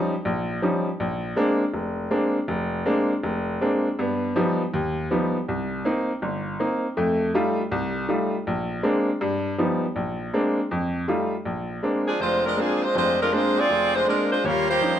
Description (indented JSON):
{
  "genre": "jazz",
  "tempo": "161 BPM",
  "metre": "4/4",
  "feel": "swing 64% on 8ths",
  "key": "Bb major, Bb mixolydian from 11.5 s",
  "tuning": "A4 = 440 Hz",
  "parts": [
    { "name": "bright upright piano", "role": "accompaniment", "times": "0.0-15.0 s", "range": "F1 to F4", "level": "-23 LUFS", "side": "equal", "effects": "none" },
    { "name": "bright saxophone section", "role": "melody", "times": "12.1-15.0 s", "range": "F3 to D5", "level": "-20 LUFS", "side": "equal", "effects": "none" }
  ],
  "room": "wet large studio reverb, RT60 1.2 s",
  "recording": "none",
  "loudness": "-22 LUFS",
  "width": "side -10 dB against mid",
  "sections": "0.0-11.5 A section; 11.5-15.0 B section",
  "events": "none",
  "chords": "0.0 Eb9; 1.0 Bb9; 4.0 Gaug7; 5.5 Cm7; 7.0 F9; 8.5 Bb9; 9.2 Gaug7; 10.0 Bb9; 10.7 F9; 11.5 Bb9; 14.4 Eb9"
}